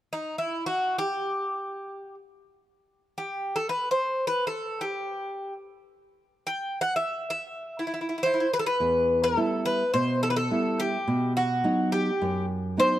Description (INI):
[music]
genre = greek folk, Greek bouzouki band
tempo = free time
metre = none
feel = none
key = E harmonic minor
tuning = A4 = 441 Hz
[part]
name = Greek bouzouki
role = melody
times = 0.1-13.0 s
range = D#4 to G5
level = -26 LUFS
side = equal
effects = none
[part]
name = nylon-string guitar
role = accompaniment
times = 8.8-13.0 s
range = E2 to E4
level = -26 LUFS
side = right 1 dB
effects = none
[sound]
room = moderate plate reverb, RT60 2.8 s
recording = dark, warm production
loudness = -25 LUFS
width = side -13 dB against mid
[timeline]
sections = 0.0-8.8 A section; 8.8-13.0 B section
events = none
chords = 0.0 N.C.; 8.8 Em; 11.1 B